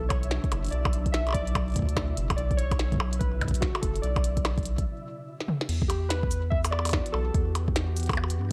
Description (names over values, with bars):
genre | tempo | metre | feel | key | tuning
IDM | 145 BPM | 4/4 | swing 62% on 16ths | E dorian | A4 = 440 Hz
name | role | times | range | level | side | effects
warbly lo-fi synth keys | melody | 0.0-7.5 s | F#4 to E5 | -37 LUFS | equal | chorus, delay
glassy FM pad | sustained chords | 0.0-8.5 s | B2 to G4 | -43 LUFS | equal | ensemble chorus, built-in reverb
round analog bass | bass | 0.0-8.5 s | F#1 to G2 | -31 LUFS | equal | none
flickering grainy texture | texture | 0.0-4.9 s | E4 to E5 | -48 LUFS | equal | built-in reverb, sidechain pumping
electronic kick drum | drums | 0.1-8.2 s | none | -31 LUFS | equal | none
glitchy drum kit | drums | 0.1-8.4 s | cabasa, crash cymbal, hi-hat, percussion blips, snare drum, toms | -34 LUFS | equal | none
room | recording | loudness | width
light reverb, digital ambience | dark, warm production | -27 LUFS | mono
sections
0.0-5.7 A section; 5.7-8.5 B section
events
break 4.9-5.7; drum fill 5.4-5.7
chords
0.0 Bm; 5.7 Em9